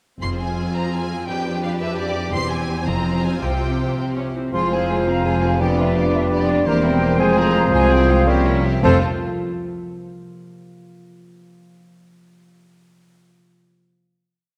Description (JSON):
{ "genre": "classical, dramatic, fast romantic movement for symphony orchestra", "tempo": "103-116 BPM (dotted quarters)", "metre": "6/8", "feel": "straight", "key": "F minor", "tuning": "A4 = 440 Hz", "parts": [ { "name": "rich studio violin section", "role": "melody", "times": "0.2-9.0 s", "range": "Ab4 to C6", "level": "-32 LUFS", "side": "equal", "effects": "none" }, { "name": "bright symphonic violin section", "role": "second line", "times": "0.2-9.0 s", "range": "E4 to C5", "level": "-35 LUFS", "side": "equal", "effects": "none" }, { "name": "clear symphonic viola section", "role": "accompaniment", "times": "0.2-9.0 s", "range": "Ab3 to G4", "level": "-30 LUFS", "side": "equal", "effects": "none" }, { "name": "concert harp", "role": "arpeggios", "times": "0.2-9.0 s", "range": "E2 to F5", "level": "-28 LUFS", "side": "equal", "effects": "none" }, { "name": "rich symphonic cello section", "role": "bass", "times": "0.2-9.0 s", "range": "C2 to C3", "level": "-26 LUFS", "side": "equal", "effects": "none" }, { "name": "rich symphonic double bass section", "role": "bass", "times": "0.2-9.0 s", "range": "E1 to C2", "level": "-26 LUFS", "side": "equal", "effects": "none" }, { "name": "clear clarinet", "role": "second line", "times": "4.5-9.0 s", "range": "Ab4 to C5", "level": "-29 LUFS", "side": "equal", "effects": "none" }, { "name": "clear oboe", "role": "second line", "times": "4.5-9.0 s", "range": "C5 to F5", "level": "-30 LUFS", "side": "equal", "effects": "none" }, { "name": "flute section", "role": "second line", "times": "4.5-9.0 s", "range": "D5 to C6", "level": "-28 LUFS", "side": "equal", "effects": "none" }, { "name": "warm bassoon", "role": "accompaniment", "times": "4.5-9.0 s", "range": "F3 to G3", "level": "-26 LUFS", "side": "equal", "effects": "none" }, { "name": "mellow French horn section", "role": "sustained chords", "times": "4.5-9.0 s", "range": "F3 to F4", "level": "-28 LUFS", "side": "equal", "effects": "none" } ], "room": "wet scoring stage reverb, RT60 1.9 s", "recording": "none", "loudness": "-19 LUFS", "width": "mono", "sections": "0.2-4.5 A section; 4.5-8.8 A section; 8.8-9.9 final chord", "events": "none", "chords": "0.2 Fm; 1.3 G7/F; 2.3 C/E; 2.9 Fm; 3.4 Csus4; 4.0 C; 4.5 Fm; 5.6 G7/F; 6.7 C7/E; 7.2 Fm; 7.7 Fm/C; 8.3 C7b9; 8.8 F" }